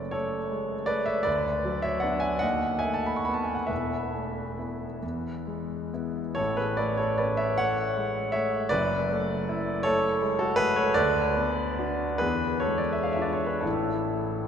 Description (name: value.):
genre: classical, romantic nocturne for solo piano.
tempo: 40-55 BPM (dotted quarters).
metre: 6/8.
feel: rubato.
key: A major.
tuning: A4 = 438 Hz.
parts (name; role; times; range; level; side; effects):
clear concert grand piano; solo; 0.0-14.5 s; E1 to C#6; -25 LUFS; equal; none.
room: wet cathedral reverb, RT60 4.1 s.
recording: none.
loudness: -25 LUFS.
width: side -8 dB against mid.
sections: 0.0-14.5 A section.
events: none.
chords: 0.0 F#m; 1.3 Bm/D; 2.4 B7/D#; 3.7 Esus4; 5.0 E; 6.4 A; 8.7 F#m7; 11.0 Bm/D; 12.2 E7b9; 13.6 A5.